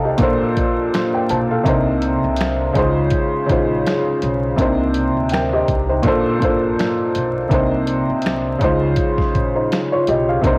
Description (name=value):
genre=lo-fi hip hop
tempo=82 BPM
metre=4/4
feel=swing 57% on 16ths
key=unclear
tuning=A4 = 441 Hz
part: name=felt-muted upright piano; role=accompaniment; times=0.0-10.6 s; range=Bb2 to Bb5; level=-16 LUFS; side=equal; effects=low-pass filter
part: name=upright bass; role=bass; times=0.0-10.6 s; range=Bb1 to D2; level=-24 LUFS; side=equal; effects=none
part: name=lo-fi sampler-style drum kit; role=drums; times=0.2-10.6 s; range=finger snaps, hi-hat, kick drum, snare drum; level=-22 LUFS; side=equal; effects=none
room=light reverb, studio reverb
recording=home recording on cassette, vinyl crackle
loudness=-15 LUFS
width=side -27 dB against mid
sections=0.0-10.6 A section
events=none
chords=0.2 Bbmaj13; 1.7 Cm9; 2.8 Dbmaj9; 4.6 Cm9; 6.0 Bbmaj9; 7.5 Cm9; 8.6 Dbmaj9